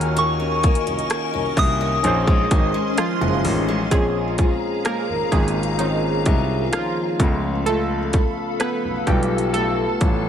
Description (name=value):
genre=contemporary R&B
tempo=64 BPM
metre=4/4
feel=straight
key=Bb minor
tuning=A4 = 440 Hz
part: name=soft synth bell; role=melody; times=0.0-2.9 s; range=Db6 to F6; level=-24 LUFS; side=right 1 dB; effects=chorus, ping-pong delay
part: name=warm analog keys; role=accompaniment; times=0.0-10.3 s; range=Eb3 to C5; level=-24 LUFS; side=right 3 dB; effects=chorus
part: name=glassy FM pad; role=sustained chords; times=0.0-10.3 s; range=Db4 to Db6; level=-26 LUFS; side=left 2 dB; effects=ensemble chorus, built-in reverb
part: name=picked steel-string acoustic guitar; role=arpeggios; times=0.0-10.3 s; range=Bb2 to F4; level=-27 LUFS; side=left 4 dB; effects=ping-pong delay
part: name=warm grand piano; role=bass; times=0.0-10.3 s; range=Gb1 to Eb2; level=-24 LUFS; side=left 1 dB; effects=none
part: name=trap drum kit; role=drums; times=0.0-10.2 s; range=hi-hat, kick drum, rim click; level=-21 LUFS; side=equal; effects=vintage 12-bit sampler grit
part: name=glassy wavetable pluck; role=texture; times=0.0-0.5 s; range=none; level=barely audible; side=none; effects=none
room=light reverb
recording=none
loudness=-18 LUFS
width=side -9 dB against mid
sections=0.0-3.9 A section; 3.9-10.3 B section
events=synth keys solo 3.9-10.3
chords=0.0 Ebm7; 2.0 Bbm11; 3.9 Bbm7; 7.2 Dbaug7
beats=| 0.16 1.10 2.04 2.98 | 3.91 4.85 5.79 6.73 | 7.66 8.60 9.54